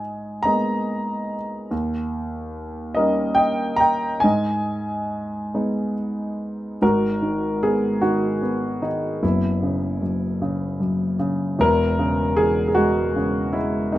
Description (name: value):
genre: classical, lyrical solo piano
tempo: 45-51 BPM (dotted quarters)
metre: 6/8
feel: rubato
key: G# harmonic minor, G# minor from 6.8 s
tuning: A4 = 441 Hz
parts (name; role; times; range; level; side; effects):
- dark grand piano; solo; 0.0-14.0 s; D#1 to A#5; -20 LUFS; equal; none
room: moderate studio reverb, RT60 0.5 s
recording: minimal, uncompressed stereo recording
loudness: -20 LUFS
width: side -15 dB against mid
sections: 0.0-6.8 A section; 6.8-14.0 B section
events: none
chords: 0.0 G#madd9; 1.7 D#7; 4.2 G#m; 6.8 G#m7; 9.2 F#7sus4; 11.6 C#m/E